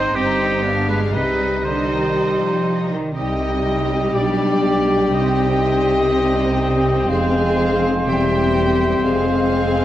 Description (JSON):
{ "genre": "classical", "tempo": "122 BPM", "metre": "4/4", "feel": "rubato", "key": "C minor", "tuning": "A4 = 440 Hz", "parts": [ { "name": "rich symphonic violin section", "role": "melody", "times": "0.0-9.8 s", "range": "D5 to G5", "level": "-31 LUFS", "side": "left 4 dB", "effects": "none" }, { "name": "clear oboe", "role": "second line", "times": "0.0-9.8 s", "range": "G4 to Eb5", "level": "-24 LUFS", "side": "right 1 dB", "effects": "none" }, { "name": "clear symphonic violin section", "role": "second line", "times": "0.0-9.8 s", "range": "D4 to Ab4", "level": "-28 LUFS", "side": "left 2 dB", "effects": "none" }, { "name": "clear symphonic viola section", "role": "accompaniment", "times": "0.0-9.8 s", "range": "G3 to C4", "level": "-24 LUFS", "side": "equal", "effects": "none" }, { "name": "rich symphonic cello section", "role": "bass", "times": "0.0-9.8 s", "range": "E2 to F3", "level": "-24 LUFS", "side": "right 2 dB", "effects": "none" }, { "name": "rich symphonic double bass section", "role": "bass", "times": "0.0-9.8 s", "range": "E1 to C2", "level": "-25 LUFS", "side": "right 2 dB", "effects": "none" }, { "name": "silver concert flute", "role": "second line", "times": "3.2-9.8 s", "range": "E5 to G5", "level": "-27 LUFS", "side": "left 2 dB", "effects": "none" }, { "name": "mellow bassoon", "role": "accompaniment", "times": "3.2-9.8 s", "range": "G3 to Ab3", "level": "-22 LUFS", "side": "left 1 dB", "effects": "none" }, { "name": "mellow French horn section", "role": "sustained chords", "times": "3.2-9.8 s", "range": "G3 to Eb4", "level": "-22 LUFS", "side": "left 3 dB", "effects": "none" } ], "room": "wet scoring stage reverb, RT60 1.6 s", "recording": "worn, warbling old tape, cassette tape, warbly pitch drift", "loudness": "-16 LUFS", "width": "side -12 dB against mid", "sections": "0.0-3.2 A section; 3.2-9.8 B section", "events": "none", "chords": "0.2 Cm/G; 0.7 G7; 1.1 Cm; 4.1 G/B; 5.1 Cm; 7.1 Fm; 8.1 C/E; 9.0 Fm" }